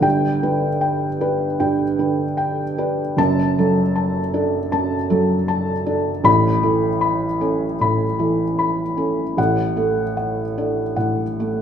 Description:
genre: neoclassical minimalist piano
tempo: 77 BPM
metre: 4/4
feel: rubato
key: D major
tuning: A4 = 440 Hz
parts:
  - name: felt-muted upright piano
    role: solo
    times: 0.0-11.6 s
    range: F#1 to B5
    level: -17 LUFS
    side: equal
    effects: none
room: wet recital hall reverb, RT60 1.4 s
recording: recorded in a church or concert hall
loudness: -17 LUFS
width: side -8 dB against mid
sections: 0.0-11.6 A section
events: none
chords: 0.0 G; 3.2 D/F#; 6.3 Aadd9; 9.4 D/A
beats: | 0.04 0.83 1.61 2.39 | 3.18 3.95 4.72 5.49 | 6.27 7.04 7.80 8.58 | 9.38 10.18 10.98

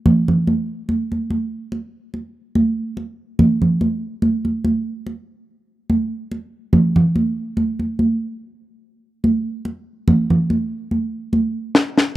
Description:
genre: soul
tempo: 72 BPM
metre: 4/4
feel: swing 54% on 16ths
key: none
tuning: none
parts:
  - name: congas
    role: percussion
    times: 0.1-11.5 s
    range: none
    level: -17 LUFS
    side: right 1 dB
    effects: none
  - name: snare drum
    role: drums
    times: 11.7-12.1 s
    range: none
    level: -14 LUFS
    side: left 2 dB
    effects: none
room: small room ambience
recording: dry, close 1970s-style studio recording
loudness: -17 LUFS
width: side -15 dB against mid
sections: 0.0-12.2 A section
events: drum fill 10.5-12.2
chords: none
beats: 0.48 1.31 | 2.14 2.98 3.81 4.65 | 5.48 6.32 7.15 7.99 | 8.82 9.65 10.49 11.32

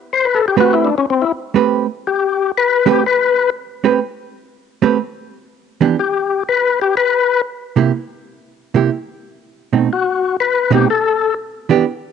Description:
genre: jazz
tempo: 122 BPM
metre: 4/4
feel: swing 68% on 8ths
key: unclear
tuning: A4 = 440 Hz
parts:
  - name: percussive tonewheel organ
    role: melody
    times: 0.1-11.3 s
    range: C4 to C5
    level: -14 LUFS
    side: left 7 dB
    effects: slow rotary speaker, cassette tape, plate reverb
  - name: hollow-body jazz guitar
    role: accompaniment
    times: 0.6-11.8 s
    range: B2 to B4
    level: -14 LUFS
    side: right 8 dB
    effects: none
room: moderate studio reverb, RT60 0.7 s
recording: home recording on cassette, nothing above 10.5 kHz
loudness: -14 LUFS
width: side -7 dB against mid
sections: 0.0-12.1 A section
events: tonewheel organ solo 0.0-12.1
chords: 0.1 Am9; 6.0 Em; 7.9 C7; 9.9 B7b9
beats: | 0.09 0.57 1.06 1.55 | 2.04 2.53 3.02 3.51 | 4.00 4.49 4.98 5.47 | 5.96 6.46 6.95 7.44 | 7.93 8.42 8.91 9.40 | 9.89 10.38 10.87 11.36

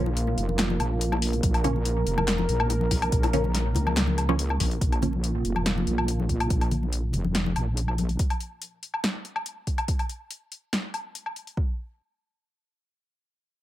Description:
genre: deep dubstep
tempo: 142 BPM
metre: 4/4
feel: half-time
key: Bb minor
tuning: A4 = 440 Hz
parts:
  - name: dark analog pad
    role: sustained chords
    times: 0.0-8.2 s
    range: Bb3 to Bb4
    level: -31 LUFS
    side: right 2 dB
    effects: chorus
  - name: filtered dub chord stab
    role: stabs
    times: 0.0-5.1 s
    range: F3 to Db4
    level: -31 LUFS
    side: right 2 dB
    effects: phaser, cassette tape, dub echo
  - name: wobble bass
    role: bass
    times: 0.0-8.2 s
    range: F1 to Db2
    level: -26 LUFS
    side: equal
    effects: chorus
  - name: congas and bongos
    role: percussion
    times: 0.1-8.1 s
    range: none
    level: -32 LUFS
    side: left 4 dB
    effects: none
  - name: deep house drum kit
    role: drums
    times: 0.2-11.6 s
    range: handclaps, hi-hat, snare drum, woodblock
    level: -29 LUFS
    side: left 1 dB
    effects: overdrive
  - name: electronic kick drum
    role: drums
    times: 1.4-11.7 s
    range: none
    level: -26 LUFS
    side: equal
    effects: overdrive
room: light reverb, digital ambience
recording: none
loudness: -23 LUFS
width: side -14 dB against mid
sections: 0.0-4.8 A section; 4.8-11.6 B section; 11.6-13.6 C section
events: drop 0.0-4.8; filter sweep on synth stab 4.8-6.5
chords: 0.0 Bbm; 4.8 Bb5; 11.6 N.C.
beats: 0.16 0.59 1.01 | 1.43 1.85 2.28 2.70 | 3.12 3.54 3.97 4.39 | 4.81 5.23 5.66 6.08 | 6.50 6.92 7.35 7.77 | 8.19 8.62 9.04 9.46 | 9.88 10.30 10.73 11.15 | 11.57

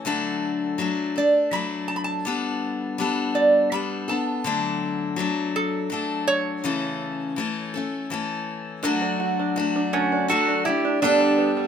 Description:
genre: acoustic folk duo or small band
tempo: 82 BPM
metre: 3/4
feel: straight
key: D major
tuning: A4 = 440 Hz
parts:
  - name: picked steel-string acoustic guitar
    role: accompaniment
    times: 0.0-11.7 s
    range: C#3 to A4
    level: -24 LUFS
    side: left 4 dB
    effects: none
  - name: lap resonator guitar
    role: melody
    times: 1.2-11.7 s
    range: A3 to B5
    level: -22 LUFS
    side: right 3 dB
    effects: none
  - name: open-back banjo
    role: arpeggios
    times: 8.8-11.7 s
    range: D3 to F#4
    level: -27 LUFS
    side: right 4 dB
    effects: none
  - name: pedal steel guitar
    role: second line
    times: 9.9-11.7 s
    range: C#4 to A4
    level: -24 LUFS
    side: right 4 dB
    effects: none
room: moderate small room reverb, RT60 0.6 s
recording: minimal, uncompressed stereo recording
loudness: -21 LUFS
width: side -8 dB against mid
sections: 0.0-8.8 A section; 8.8-11.7 A section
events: none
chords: 0.1 D; 2.3 Gadd9; 4.5 D; 6.6 A/C#; 8.8 D; 11.0 Gadd9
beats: | 0.06 0.79 1.53 | 2.26 2.99 3.72 | 4.46 5.19 5.92 | 6.65 7.38 8.11 | 8.84 9.57 10.30 | 11.02

